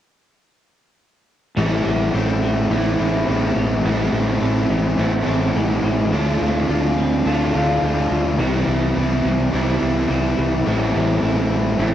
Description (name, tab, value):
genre	rock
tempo	106 BPM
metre	4/4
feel	straight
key	A minor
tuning	A4 = 440 Hz
part	electric guitar through a small old amp	arpeggios	1.6-11.9 s	F3 to A4	-26 LUFS	right 2 dB	lush chorus, analog delay
part	biting overdriven guitar	riff	1.6-11.9 s	A2 to F4	-22 LUFS	left 6 dB	lush chorus
part	raw garage guitar	riff	1.6-11.9 s	A2 to F4	-22 LUFS	right 6 dB	overdrive, reverse reverb
part	fuzz fingered electric bass	bass	1.6-11.9 s	A1 to D2	-22 LUFS	equal	overdrive
room	light reverb, digital ambience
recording	home recording on cassette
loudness	-17 LUFS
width	side -11 dB against mid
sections	1.6-11.9 A section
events	none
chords	1.6 Am7; 6.1 Dm7; 8.4 C; 10.7 Am7